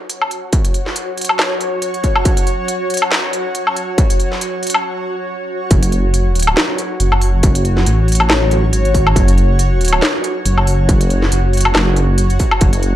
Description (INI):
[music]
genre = deep dubstep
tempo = 139 BPM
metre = 4/4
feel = swing 56% on 16ths, half-time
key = F# minor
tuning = A4 = 438 Hz
[part]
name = granular cloud pad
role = sustained chords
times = 0.0-13.0 s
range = F#4 to F#5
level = -20 LUFS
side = equal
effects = built-in reverb
[part]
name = garage drum kit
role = drums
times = 0.1-12.9 s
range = hi-hat, snare drum, woodblock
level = -18 LUFS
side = left 1 dB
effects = high-pass filter on hats, high-pass filter on snare, high-pass filter on perc, high-pass filter on room
[part]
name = electronic kick drum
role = drums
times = 0.5-12.7 s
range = none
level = -14 LUFS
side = equal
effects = distortion
[part]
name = dark detuned saw bass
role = bass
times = 5.7-13.0 s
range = F#1 to A1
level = -14 LUFS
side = equal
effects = tube saturation
[sound]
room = little or no reverb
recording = dry, gritty hardware recording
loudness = -13 LUFS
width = side -13 dB against mid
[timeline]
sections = 0.0-5.7 A section; 5.7-13.0 B section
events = build-up 0.0-5.7; break 4.8-5.7; drop 5.7-13.0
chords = 0.0 F#5